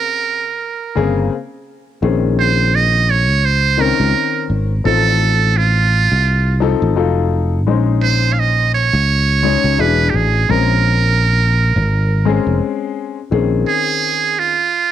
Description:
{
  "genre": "hip hop",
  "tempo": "85 BPM",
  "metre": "4/4",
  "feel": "swing 58% on 16ths",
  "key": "unclear",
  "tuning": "A4 = 439 Hz",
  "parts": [
    { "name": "trumpet with metal mute", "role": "melody", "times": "0.0-14.9 s", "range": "F4 to F5", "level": "-16 LUFS", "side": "right 7 dB", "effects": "cassette tape, plate reverb" },
    { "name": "warm upright piano", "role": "accompaniment", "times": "0.0-14.5 s", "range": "Db3 to Db5", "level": "-20 LUFS", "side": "left 9 dB", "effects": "cassette tape, plate reverb" },
    { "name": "fretless electric bass", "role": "bass", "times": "1.0-13.6 s", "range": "E1 to Db2", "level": "-15 LUFS", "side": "equal", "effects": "none" }
  ],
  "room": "light reverb",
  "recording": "home recording on cassette",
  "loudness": "-13 LUFS",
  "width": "side -11 dB against mid",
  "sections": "0.0-2.0 A section; 2.0-13.3 B section; 13.3-14.9 C section",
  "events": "stop 1.3-2.0; muted trumpet solo 13.3-14.9",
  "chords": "0.0 Bbm9; 2.0 Bbm11; 4.8 F7/A; 7.0 F7b9; 7.7 Bbm11; 9.8 E9; 10.5 Bbm9; 13.3 Bbm11"
}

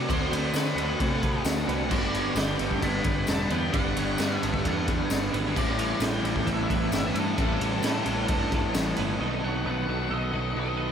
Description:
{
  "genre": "rock, shoegaze and dream pop",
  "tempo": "132 BPM",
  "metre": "4/4",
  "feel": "straight",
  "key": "A mixolydian",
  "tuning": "A4 = 444 Hz",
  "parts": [
    { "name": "twelve-string electric guitar", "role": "arpeggios", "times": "0.0-10.9 s", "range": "A4 to D#5", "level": "-37 LUFS", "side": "right 5 dB", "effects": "ensemble chorus, ping-pong delay" },
    { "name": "biting overdriven guitar", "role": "riff", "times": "0.0-10.9 s", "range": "G2 to A4", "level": "-34 LUFS", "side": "left 6 dB", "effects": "lush chorus" },
    { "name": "biting overdriven guitar", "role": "riff", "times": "0.0-9.2 s", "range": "G2 to D4", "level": "-33 LUFS", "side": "equal", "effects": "none" },
    { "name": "overdriven semi-hollow guitar", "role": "riff", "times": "0.0-10.9 s", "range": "G2 to A4", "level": "-32 LUFS", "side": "right 5 dB", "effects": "reverse reverb" },
    { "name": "fuzz picked electric bass", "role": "bass", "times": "0.0-10.9 s", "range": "E1 to D3", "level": "-31 LUFS", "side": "equal", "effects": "overdrive" },
    { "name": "octave-fuzz lead guitar", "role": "melody", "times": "0.1-10.9 s", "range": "A4 to B5", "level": "-34 LUFS", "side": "left 2 dB", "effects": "distortion, ping-pong delay" },
    { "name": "raw garage drum kit", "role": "drums", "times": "0.1-9.1 s", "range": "crash cymbal, kick drum, ride cymbal, snare drum", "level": "-29 LUFS", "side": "equal", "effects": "none" },
    { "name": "tambourine", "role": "percussion", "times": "0.5-8.9 s", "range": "none", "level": "-42 LUFS", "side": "left 7 dB", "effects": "none" }
  ],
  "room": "wet cathedral reverb, RT60 6.5 s",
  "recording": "dreamy mix soaked in reverb",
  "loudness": "-24 LUFS",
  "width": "side -8 dB against mid",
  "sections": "0.0-9.2 A section; 9.2-10.9 B section",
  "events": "none",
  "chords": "0.0 D7; 1.9 Gmaj7; 5.6 A7sus4; 9.2 B7"
}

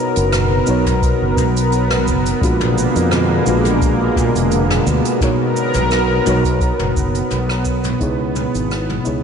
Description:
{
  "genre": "sunset chillout",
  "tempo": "86 BPM",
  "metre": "4/4",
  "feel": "swing 53% on 16ths",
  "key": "unclear",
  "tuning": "A4 = 441 Hz",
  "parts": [
    { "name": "mellow FM electric piano", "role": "accompaniment", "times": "0.0-9.2 s", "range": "G#3 to C#5", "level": "-22 LUFS", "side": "equal", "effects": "chorus, auto-pan, diffuse ambient delay" },
    { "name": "lush unison pad", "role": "sustained chords", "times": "0.0-9.2 s", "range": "D3 to A#4", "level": "-18 LUFS", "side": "right 1 dB", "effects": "chorus" },
    { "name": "fretless electric bass", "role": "bass", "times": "0.2-9.2 s", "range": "E#1 to A#2", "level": "-19 LUFS", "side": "equal", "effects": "none" },
    { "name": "jazz brush drum kit", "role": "drums", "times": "0.2-9.2 s", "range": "cabasa, hi-hat, rim click, toms", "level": "-22 LUFS", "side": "left 3 dB", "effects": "none" },
    { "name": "electronic kick drum", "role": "drums", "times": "0.9-8.2 s", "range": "none", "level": "-20 LUFS", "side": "equal", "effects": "none" }
  ],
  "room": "moderate cathedral reverb, RT60 6.3 s",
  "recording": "dreamy mix soaked in reverb, nothing above 11.0 kHz",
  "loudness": "-14 LUFS",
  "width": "side -7 dB against mid",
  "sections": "0.0-9.2 A section",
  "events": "fade-out 6.1-9.2",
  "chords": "0.0 Bmaj7; 2.4 A#7b9b13; 5.2 Bmaj7; 8.0 C#m9"
}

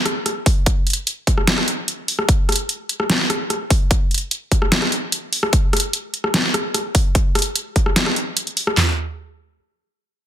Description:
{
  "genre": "dubstep",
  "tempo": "148 BPM",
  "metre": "4/4",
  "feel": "half-time",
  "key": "none",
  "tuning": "none",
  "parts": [
    { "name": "dubstep drum kit", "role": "drums", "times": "0.1-8.8 s", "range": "hi-hat, rim click, snare drum", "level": "-19 LUFS", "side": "equal", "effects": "overdrive" },
    { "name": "dubstep drum kit", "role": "drums", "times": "0.5-8.9 s", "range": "handclaps, kick drum, snare drum, toms", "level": "-17 LUFS", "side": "equal", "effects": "overdrive" }
  ],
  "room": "light reverb",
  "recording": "dense, heavily limited modern master",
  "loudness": "-17 LUFS",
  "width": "side -11 dB against mid",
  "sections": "0.0-8.8 A section; 8.8-10.3 B section",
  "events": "drop 0.0-8.8",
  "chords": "none"
}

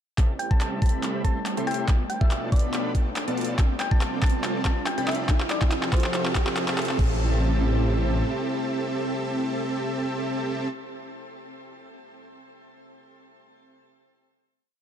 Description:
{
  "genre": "future bass",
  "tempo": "141 BPM",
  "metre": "4/4",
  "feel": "swing 54% on 16ths, half-time",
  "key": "A minor",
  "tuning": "A4 = 445 Hz",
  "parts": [
    { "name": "airy breathy pad", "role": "sustained chords", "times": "0.4-10.7 s", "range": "F3 to E5", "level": "-34 LUFS", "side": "equal", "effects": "chorus, sidechain pumping" },
    { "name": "dense compressed supersaw", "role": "riff", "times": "0.2-10.7 s", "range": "B3 to C6", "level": "-30 LUFS", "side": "right 1 dB", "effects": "cassette tape, sidechain pumping, low-pass filter, tape echo" },
    { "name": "wide detuned saw bass", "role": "bass", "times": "0.2-8.2 s", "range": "F1 to A2", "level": "-30 LUFS", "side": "equal", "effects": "chorus, tube saturation, sidechain pumping, high-pass filter" },
    { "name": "dubstep drum kit", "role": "drums", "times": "0.2-7.1 s", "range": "crash cymbal, handclaps, hi-hat, rim click", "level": "-32 LUFS", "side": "equal", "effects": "overdrive" },
    { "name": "electronic kick drum", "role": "drums", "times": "0.2-7.1 s", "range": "none", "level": "-22 LUFS", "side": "equal", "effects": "none" },
    { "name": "riser", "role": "sound effects", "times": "3.1-7.0 s", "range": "none", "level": "-36 LUFS", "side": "right 2 dB", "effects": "none" },
    { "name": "thumb-piano-like synth pluck", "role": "melody", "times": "0.4-6.2 s", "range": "C5 to A5", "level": "-34 LUFS", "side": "left 2 dB", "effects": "chorus, sidechain pumping, ping-pong delay" }
  ],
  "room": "light reverb, digital ambience",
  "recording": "dark, warm production",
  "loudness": "-22 LUFS",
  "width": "side -10 dB against mid",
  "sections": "0.2-7.0 build; 7.0-10.4 final chord",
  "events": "build-up 0.2-7.0; drum fill 0.2-7.0; riser 3.1-7.0",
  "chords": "0.2 Am7; 1.9 Bm7b5; 3.6 G9sus4; 5.3 Fmaj9; 7.0 Am7"
}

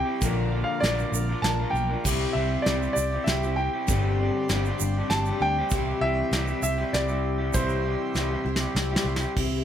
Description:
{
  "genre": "folk rock and heartland rock",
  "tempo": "98 BPM",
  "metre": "3/4",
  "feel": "straight",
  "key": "C mixolydian",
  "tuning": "A4 = 440 Hz",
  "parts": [
    { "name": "warm baby grand piano", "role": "melody", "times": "0.0-9.0 s", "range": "C5 to A5", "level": "-29 LUFS", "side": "right 1 dB", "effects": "none" },
    { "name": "picked steel-string acoustic guitar", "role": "accompaniment", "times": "0.0-9.6 s", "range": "G2 to Bb4", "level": "-32 LUFS", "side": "left 6 dB", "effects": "none" },
    { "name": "hand-pumped harmonium", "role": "sustained chords", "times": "0.0-9.3 s", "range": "F4 to C6", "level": "-38 LUFS", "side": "right 3 dB", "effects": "none" },
    { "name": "electric guitar through a small old amp", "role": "riff", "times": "0.0-9.6 s", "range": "G2 to Bb4", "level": "-31 LUFS", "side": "equal", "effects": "none" },
    { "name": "fingered electric bass", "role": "bass", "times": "0.2-9.6 s", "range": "G1 to D2", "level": "-28 LUFS", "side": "right 1 dB", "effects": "none" },
    { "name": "soft brush drum kit", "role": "drums", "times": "0.2-9.5 s", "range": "crash cymbal, hi-hat, kick drum, ride cymbal, snare drum", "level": "-28 LUFS", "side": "equal", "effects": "none" },
    { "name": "egg shaker", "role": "percussion", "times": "0.2-9.3 s", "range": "none", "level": "-36 LUFS", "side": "right 10 dB", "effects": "none" }
  ],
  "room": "light reverb",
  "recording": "none",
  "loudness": "-23 LUFS",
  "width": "side -9 dB against mid",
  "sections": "0.0-9.4 A section",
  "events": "drum fill 8.1-9.4",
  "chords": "0.2 Bb; 2.1 C; 3.9 Gsus4; 5.7 C"
}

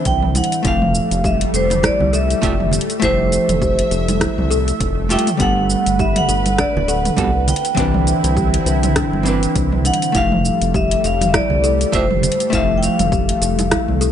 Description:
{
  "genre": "sunset chillout",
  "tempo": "101 BPM",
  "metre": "4/4",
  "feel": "swing 58% on 16ths",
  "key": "F lydian",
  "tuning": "A4 = 436 Hz",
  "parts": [
    { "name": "archtop guitar, miked and amplified", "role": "accompaniment", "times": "0.0-14.1 s", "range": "E3 to B5", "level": "-22 LUFS", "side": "moving between left 5 dB and right 5 dB", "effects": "auto-pan, tape echo" },
    { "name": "lush unison pad", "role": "sustained chords", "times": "0.0-14.1 s", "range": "D3 to E5", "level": "-24 LUFS", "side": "equal", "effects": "chorus, phaser" },
    { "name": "vibraphone with medium hard mallets", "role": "melody", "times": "0.1-14.0 s", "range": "C5 to G5", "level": "-20 LUFS", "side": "equal", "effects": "digital delay" },
    { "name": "round analog bass", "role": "bass", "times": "0.1-14.1 s", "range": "D1 to C2", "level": "-20 LUFS", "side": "equal", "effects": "none" },
    { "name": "deep house drum kit", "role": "drums", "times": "0.1-14.1 s", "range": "cabasa, hi-hat, rim click, toms", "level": "-22 LUFS", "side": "right 1 dB", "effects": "overdrive, small room ambience" },
    { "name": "electronic kick drum", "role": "drums", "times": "0.1-13.9 s", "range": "none", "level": "-24 LUFS", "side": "equal", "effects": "overdrive, small room ambience" },
    { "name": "kalimba", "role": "arpeggios", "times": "0.4-14.1 s", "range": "D4 to B4", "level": "-27 LUFS", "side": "left 2 dB", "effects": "tape echo" },
    { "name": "congas", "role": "percussion", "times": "0.4-13.7 s", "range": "none", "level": "-26 LUFS", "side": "right 3 dB", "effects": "none" }
  ],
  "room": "light reverb",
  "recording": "nothing above 10.8 kHz",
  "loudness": "-14 LUFS",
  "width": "side -9 dB against mid",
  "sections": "0.0-14.1 A section",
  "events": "none",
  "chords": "0.0 Cmaj9; 0.6 Fmaj9; 5.4 Gmaj9; 7.5 Cmaj9; 10.2 Fmaj9"
}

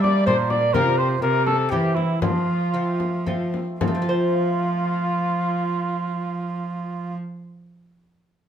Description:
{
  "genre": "classical, renaissance-style consort dance",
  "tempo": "109-127 BPM",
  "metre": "3/4",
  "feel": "straight",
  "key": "F major",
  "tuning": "A4 = 440 Hz",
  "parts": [
    { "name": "mellow cornet", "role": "melody", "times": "0.0-7.1 s", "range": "E4 to D5", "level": "-26 LUFS", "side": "left 5 dB", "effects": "none" },
    { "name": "mellow cor anglais", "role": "second line", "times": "0.0-7.1 s", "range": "E4 to D5", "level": "-27 LUFS", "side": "right 5 dB", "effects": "none" },
    { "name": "lute", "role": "accompaniment", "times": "0.0-7.4 s", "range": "Bb2 to C5", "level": "-27 LUFS", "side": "left 1 dB", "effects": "none" },
    { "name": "rich cello", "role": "bass", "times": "0.0-7.1 s", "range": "Bb2 to G3", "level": "-24 LUFS", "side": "right 2 dB", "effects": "none" },
    { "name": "frame drum", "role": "percussion", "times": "0.0-4.1 s", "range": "none", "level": "-28 LUFS", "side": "left 4 dB", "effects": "none" }
  ],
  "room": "moderate stone room reverb, RT60 1.1 s",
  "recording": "none",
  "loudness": "-20 LUFS",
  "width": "side -9 dB against mid",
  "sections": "0.0-3.8 A section; 3.8-7.1 B section",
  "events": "slowing down 0.0-3.8",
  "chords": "0.0 Gm; 0.7 C7sus4; 1.2 C7; 2.2 F"
}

